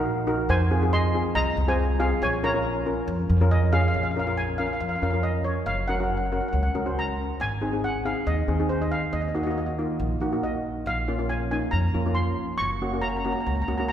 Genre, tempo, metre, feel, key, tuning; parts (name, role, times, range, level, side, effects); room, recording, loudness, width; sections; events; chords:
calypso; 139 BPM; 4/4; straight; Bb minor; A4 = 439 Hz
steel pan; accompaniment; 0.0-13.9 s; Bb3 to C5; -27 LUFS; left 1 dB
upright bass; bass; 0.0-13.9 s; Gb1 to F2; -26 LUFS; right 1 dB
steel pan; melody; 0.5-13.9 s; Ab4 to Db6; -29 LUFS; equal
wet concert hall reverb, RT60 2.5 s; recorded in a church or concert hall; -23 LUFS; side -10 dB against mid
0.0-3.9 A section; 3.9-13.9 B section
0.5 Fm7; 2.2 Bbm7; 3.9 Bbm; 5.7 Gb; 7.4 Ab; 9.1 Ebm; 10.9 Bbm; 12.6 Gb